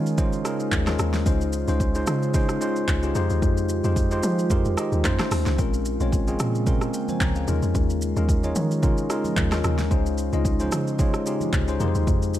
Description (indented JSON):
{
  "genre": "amapiano",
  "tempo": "111 BPM",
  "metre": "4/4",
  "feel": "swing 55% on 16ths",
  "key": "unclear",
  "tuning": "A4 = 441 Hz",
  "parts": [
    { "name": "bell-like tine electric piano", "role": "accompaniment", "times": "0.0-12.4 s", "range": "Ab3 to Ab5", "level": "-26 LUFS", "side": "moving between left 7 dB and right 2 dB", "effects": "auto-pan" },
    { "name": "glassy FM pad", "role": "sustained chords", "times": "0.0-12.4 s", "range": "Db3 to C5", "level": "-32 LUFS", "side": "right 2 dB", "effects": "ensemble chorus, built-in reverb" },
    { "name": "deep log drum bass", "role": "bass", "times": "0.0-12.4 s", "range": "Bb1 to F3", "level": "-25 LUFS", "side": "equal", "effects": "none" },
    { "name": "deep house drum kit", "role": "drums", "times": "0.1-12.4 s", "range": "handclaps, hi-hat, kick drum, rim click, shaker, snare drum", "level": "-25 LUFS", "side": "equal", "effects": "none" },
    { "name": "congas", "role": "percussion", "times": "6.3-12.2 s", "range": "none", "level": "-33 LUFS", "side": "right 4 dB", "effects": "none" }
  ],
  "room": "little or no reverb",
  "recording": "none",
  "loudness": "-21 LUFS",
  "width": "side -13 dB against mid",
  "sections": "0.0-12.4 A section",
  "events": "none",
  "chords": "0.0 Eb9sus4; 1.3 Dbmaj9; 3.2 Fm9; 5.0 F7b13; 5.6 Bbm9; 7.5 Eb9sus4; 9.9 Dbmaj9; 11.8 Fm9"
}